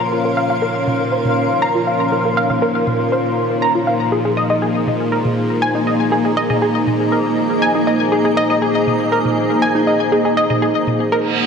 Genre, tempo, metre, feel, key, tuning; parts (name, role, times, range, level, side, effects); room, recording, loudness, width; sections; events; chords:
melodic techno; 120 BPM; 4/4; straight; A4 = 439 Hz
dark analog pad; sustained chords; 0.0-11.5 s; Bb3 to Db5; -20 LUFS; equal; chorus
bowed-like drone; drone; 0.0-11.5 s; Bb2 to F3; -25 LUFS; left 1 dB; built-in reverb
granular cloud pad; texture; 0.0-11.5 s; Bb3 to C6; -21 LUFS; equal; built-in reverb, ensemble chorus
tight sequenced synth; arpeggios; 0.1-11.2 s; Eb4 to Bb5; -19 LUFS; left 1 dB; chorus, ping-pong delay
electronic toms; drums; 0.9-11.0 s; -24 LUFS; right 2 dB; overdrive
reverse cymbal; sound effects; 11.2-11.5 s; -18 LUFS; right 8 dB
wet plate reverb, RT60 3.0 s; dreamy mix soaked in reverb; -14 LUFS; side -6 dB against mid
0.0-11.5 A section
filter sweep on synth arpeggio sound 0.0-11.5; filter sweep on analog synth pad 0.0-11.5; reverse cymbal 11.2
0.0 Bbm; 4.1 Abadd9/Bb